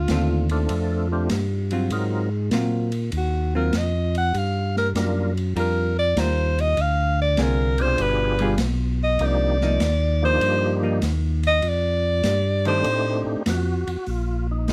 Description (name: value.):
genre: soul jazz organ trio.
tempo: 99 BPM.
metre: 4/4.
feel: swing 68% on 8ths.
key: unclear.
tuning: A4 = 440 Hz.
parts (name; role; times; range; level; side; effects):
warm alto saxophone; melody; 0.0-13.2 s; F4 to Gb5; -26 LUFS; equal; none.
tonewheel organ; bass; 0.0-14.7 s; G1 to Bb2; -25 LUFS; equal; overdrive, slow rotary speaker.
hollow-body jazz guitar; accompaniment; 0.1-14.7 s; D3 to Bb4; -29 LUFS; equal; none.
open jazz drum kit; drums; 0.1-14.7 s; hi-hat, ride cymbal, snare drum; -34 LUFS; equal; none.
percussive tonewheel organ; melody; 0.5-14.7 s; Cb3 to Bb4; -29 LUFS; equal; slow rotary speaker, overdrive, chorus vibrato.
room: light reverb.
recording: close, detailed microphones.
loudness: -22 LUFS.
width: mono.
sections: 0.0-14.1 A section.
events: alto saxophone solo 0.0-14.1.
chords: 0.0 Dm7; 1.9 Ab13; 4.3 Gm7; 6.8 Dm7b5; 8.0 G7b9; 9.2 Cm11; 11.6 F13; 14.1 Bbsus4.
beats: 0.10 0.70 1.31 | 1.92 2.53 3.13 3.74 | 4.35 4.96 5.56 6.17 | 6.78 7.39 7.99 8.60 | 9.21 9.82 10.43 11.03 | 11.64 12.25 12.86 13.47 | 14.07 14.68.